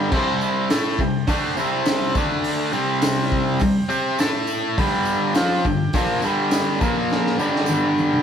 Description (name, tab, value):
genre	garage rock duo or trio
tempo	103 BPM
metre	4/4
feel	straight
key	unclear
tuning	A4 = 445 Hz
part	combo organ	sustained chords	0.0-8.2 s	F4 to A5	-33 LUFS	right 1 dB	spring reverb
part	overdriven electric guitar	riff	0.0-8.2 s	G2 to C5	-19 LUFS	equal	none
part	crunchy breakbeat drum kit	drums	0.1-8.2 s	crash cymbal, hi-hat, kick drum, snare drum, toms	-24 LUFS	equal	none
part	tambourine	percussion	0.4-8.1 s	none	-39 LUFS	right 4 dB	none
room	moderate stone room reverb, RT60 1.3 s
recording	band playing live in one room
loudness	-18 LUFS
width	side -8 dB against mid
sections	0.0-8.2 A section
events	drum fill 7.1-8.2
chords	0.1 C5; 2.2 D5; 2.7 C5; 4.2 A5; 4.8 G5; 6.8 Bb5; 7.4 G5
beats	| 0.12 0.70 1.28 1.86 | 2.45 3.03 3.61 4.20 | 4.78 5.36 5.94 6.53 | 7.11 7.69